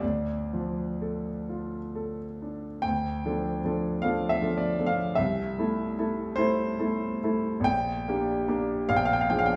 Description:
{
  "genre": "classical, romantic nocturne for solo piano",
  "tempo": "40-52 BPM",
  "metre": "4/4",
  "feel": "rubato",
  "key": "D minor",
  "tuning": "A4 = 440 Hz",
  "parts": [
    { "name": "clear grand piano", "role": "solo", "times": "0.0-9.6 s", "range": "Bb1 to G5", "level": "-28 LUFS", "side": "equal", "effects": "none" }
  ],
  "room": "moderate recital hall reverb, RT60 1.7 s",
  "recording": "small room reverb",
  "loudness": "-28 LUFS",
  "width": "mono",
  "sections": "0.0-2.8 A section; 2.8-9.6 A section",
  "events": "none",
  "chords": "0.0 Dm; 5.2 Am/C; 7.7 Gm/Bb; 8.9 Bb7",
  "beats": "0.02 1.47 | 2.83 4.02 5.18 6.37 | 7.66 8.88"
}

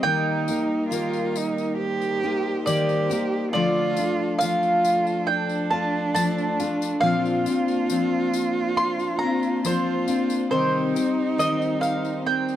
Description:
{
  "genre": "acoustic folk duo or small band",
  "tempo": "69 BPM",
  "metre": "4/4",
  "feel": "straight",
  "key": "unclear",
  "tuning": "A4 = 440 Hz",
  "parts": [
    { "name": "mandolin", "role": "melody", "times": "0.0-12.6 s", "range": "C5 to C6", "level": "-25 LUFS", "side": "right 2 dB", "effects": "none" },
    { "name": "warm cello", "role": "second line", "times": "0.0-12.6 s", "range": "C4 to G4", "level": "-27 LUFS", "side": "right 4 dB", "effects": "none" },
    { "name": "picked steel-string acoustic guitar", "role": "accompaniment", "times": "0.0-12.6 s", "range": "Bb2 to G4", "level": "-25 LUFS", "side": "left 4 dB", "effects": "none" },
    { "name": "clear chamber string section", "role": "sustained chords", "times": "0.0-12.6 s", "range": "F3 to C5", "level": "-32 LUFS", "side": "right 2 dB", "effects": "none" },
    { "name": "tambourine", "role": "percussion", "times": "0.5-12.6 s", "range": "none", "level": "-37 LUFS", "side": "left 21 dB", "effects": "none" }
  ],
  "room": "light reverb",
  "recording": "dry, close 1970s-style studio recording",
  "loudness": "-21 LUFS",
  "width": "side -11 dB against mid",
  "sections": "0.0-12.6 A section",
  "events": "none",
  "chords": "0.0 Eb; 3.5 Dm; 7.0 Bbadd9; 10.5 Cm",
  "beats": "| 0.04 0.92 1.79 2.66 | 3.54 4.41 5.28 6.15 | 7.03 7.90 8.77 9.64 | 10.52 11.39 12.26"
}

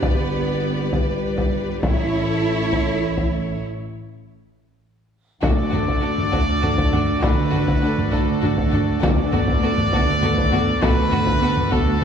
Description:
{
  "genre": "cinematic, epic orchestral film score",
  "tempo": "67 BPM (dotted quarters)",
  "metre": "6/8",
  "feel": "straight",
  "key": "D major",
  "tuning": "A4 = 440 Hz",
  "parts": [
    { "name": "warm symphonic violin section", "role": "melody", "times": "0.0-12.0 s", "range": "A4 to D5", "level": "-33 LUFS", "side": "left 4 dB", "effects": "none" },
    { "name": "warm symphonic violin section", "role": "second line", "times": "0.0-11.8 s", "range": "F#4 to B4", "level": "-31 LUFS", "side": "left 2 dB", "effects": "none" },
    { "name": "warm symphonic viola section", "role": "accompaniment", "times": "0.0-12.0 s", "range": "B3 to G4", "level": "-30 LUFS", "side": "right 2 dB", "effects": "none" },
    { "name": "dark French horn section", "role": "sustained chords", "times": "0.0-12.0 s", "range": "B3 to C#5", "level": "-30 LUFS", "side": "left 4 dB", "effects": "none" },
    { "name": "dark tuba", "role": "bass", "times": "0.0-12.0 s", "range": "G1 to D2", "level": "-26 LUFS", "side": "right 3 dB", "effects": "none" },
    { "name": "warm symphonic cello section", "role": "bass", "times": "0.0-12.0 s", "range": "D2 to E4", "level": "-27 LUFS", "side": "right 1 dB", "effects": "none" },
    { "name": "warm symphonic double bass section", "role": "bass", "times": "0.0-12.0 s", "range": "G1 to D2", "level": "-28 LUFS", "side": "right 2 dB", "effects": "none" },
    { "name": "solo taiko drums", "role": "drums", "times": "0.0-12.0 s", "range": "none", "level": "-22 LUFS", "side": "left 1 dB", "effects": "none" },
    { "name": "pipe organ, strings celeste", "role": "sustained chords", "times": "5.4-12.0 s", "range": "A3 to D5", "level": "-30 LUFS", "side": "right 1 dB", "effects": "none" },
    { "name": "clear trumpet", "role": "stabs", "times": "5.4-12.0 s", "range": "A4 to D5", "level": "-24 LUFS", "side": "equal", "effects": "none" },
    { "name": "timpani", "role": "percussion", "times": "5.4-6.3, 9.0-9.9 s", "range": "D3", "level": "-30 LUFS", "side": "left 3 dB", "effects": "none" }
  ],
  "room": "wet scoring stage reverb, RT60 1.6 s",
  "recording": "heard from further back in the room",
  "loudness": "-18 LUFS",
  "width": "side -8 dB against mid",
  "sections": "0.0-5.4 A section; 5.4-12.0 B section",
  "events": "break 3.6-5.4; drum fill 5.0-5.4",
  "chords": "0.0 G; 1.8 A; 3.6 N.C.; 5.4 D",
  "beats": "| 0.03 0.93 | 1.83 2.73 | 3.63 4.53 | 5.43 6.33 | 7.23 8.13 | 9.03 9.93 | 10.83 11.72"
}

